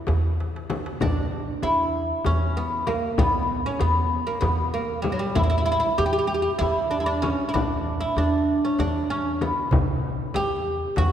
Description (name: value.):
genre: Turkish makam ensemble.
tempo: 193 BPM (eighths).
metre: 7/8.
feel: straight.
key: E makam nikriz.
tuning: A4 = 440 Hz.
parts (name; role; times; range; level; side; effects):
oud; melody; 0.0-11.1 s; E3 to G4; -24 LUFS; right 1 dB; none.
upright bass; bass; 0.1-11.1 s; E2; -27 LUFS; equal; none.
darbuka; percussion; 0.1-1.0, 9.7-11.1 s; none; -32 LUFS; right 1 dB; none.
frame drum; percussion; 0.1-11.1 s; none; -29 LUFS; left 2 dB; none.
room: wet church reverb, RT60 2.7 s.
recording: recorded in a church or concert hall.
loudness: -21 LUFS.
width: side -10 dB against mid.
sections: 0.0-1.0 A section; 1.0-11.1 A section.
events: drum fill 0.4-1.0.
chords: none.